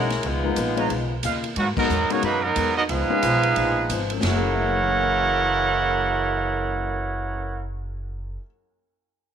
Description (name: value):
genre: jazz, big band swing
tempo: 180 BPM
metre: 4/4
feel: swing 62% on 8ths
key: F# mixolydian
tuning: A4 = 435 Hz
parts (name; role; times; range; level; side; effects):
- clear saxophone section; melody; 0.0-1.2 s; G#3 to A#4; -27 LUFS; left 2 dB; none
- clear upright piano; accompaniment; 0.0-8.5 s; F#2 to C#5; -30 LUFS; left 12 dB; none
- picked steel-string acoustic guitar; accompaniment; 0.0-8.4 s; F#2 to A#4; -34 LUFS; left 10 dB; none
- mellow trumpet section; stabs; 0.0-1.4 s; E#4 to A#5; -31 LUFS; right 9 dB; none
- upright bass; bass; 0.0-8.3 s; F#1 to G#2; -28 LUFS; equal; none
- swinging big-band drum kit; drums; 0.1-4.3 s; crash cymbal, hi-hat, kick drum, ride cymbal, snare drum; -30 LUFS; right 2 dB; none
- clear trombone section; second line; 0.2-7.7 s; F#2 to A#4; -29 LUFS; right 10 dB; none
- clear trumpet section; melody; 1.6-7.7 s; F#3 to F#5; -22 LUFS; right 2 dB; none
room: light reverb, small room ambience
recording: 1960s-style stereo with parts hard left and right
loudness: -20 LUFS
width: side -8 dB against mid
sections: 0.0-1.6 A section; 1.6-4.2 B section; 4.2-6.9 C section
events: band accent 1.7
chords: 0.2 C#13; 1.6 G#m9; 2.9 C#9; 4.2 F#9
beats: | 0.24 0.57 0.90 1.24 | 1.57 1.90 2.23 2.57 | 2.90 3.23 3.56 3.90 | 4.23 4.56 4.89 5.22 | 5.56 5.89 6.22 6.56